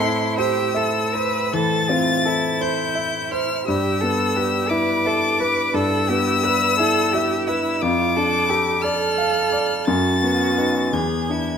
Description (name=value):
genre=classical, slow romantic movement for piano trio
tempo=50-60 BPM (dotted quarters)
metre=12/8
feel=rubato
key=A minor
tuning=A4 = 437 Hz
part: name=clear violin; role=melody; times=0.0-11.6 s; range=C6 to A6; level=-22 LUFS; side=left 5 dB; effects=none
part: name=rich cello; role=second line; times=0.0-11.6 s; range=E4 to B4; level=-24 LUFS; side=right 6 dB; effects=none
part: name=warm baby grand piano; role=accompaniment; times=0.0-11.6 s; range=E2 to F5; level=-21 LUFS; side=left 2 dB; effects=none
room=moderate recital hall reverb, RT60 1.5 s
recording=close, detailed microphones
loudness=-18 LUFS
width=side -7 dB against mid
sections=0.0-11.6 A section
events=none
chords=0.0 Am; 3.7 Em/G; 7.8 Dm/F; 9.9 B7/F#; 10.9 E7